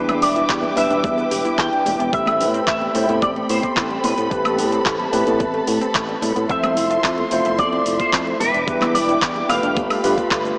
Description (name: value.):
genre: nu-disco, nu disco.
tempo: 110 BPM.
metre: 4/4.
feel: straight.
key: A minor.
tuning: A4 = 441 Hz.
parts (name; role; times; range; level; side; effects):
electric guitar with an envelope filter; melody; 0.0-10.0 s; B4 to G5; -21 LUFS; equal; ensemble chorus, diffuse ambient delay.
bell-like tine electric piano; accompaniment; 0.0-10.6 s; G3 to C5; -23 LUFS; equal; lush chorus, sidechain pumping, analog delay.
warm symphonic string section; sustained chords; 0.0-10.6 s; C4 to D6; -24 LUFS; equal; sidechain pumping.
wide unison pluck; arpeggios; 0.0-10.6 s; G3 to A4; -28 LUFS; equal; none.
modern bright fingered electric bass; bass; 0.0-10.5 s; E1 to A2; -25 LUFS; equal; tube saturation.
pop drum kit; drums; 0.1-10.6 s; handclaps, hi-hat, shaker, woodblock; -24 LUFS; equal; overdrive.
congas; percussion; 0.1-10.6 s; none; -30 LUFS; equal; none.
electronic kick drum; drums; 0.5-10.4 s; none; -25 LUFS; equal; none.
room: wet lush hall reverb, RT60 1.8 s, digital ambience.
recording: dreamy mix soaked in reverb, small speaker sound.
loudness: -16 LUFS.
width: side -30 dB against mid.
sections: 0.0-10.6 A section.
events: none.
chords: 0.0 Em7; 2.1 Am9; 6.5 Fmaj7; 8.4 Em7; 9.8 G9.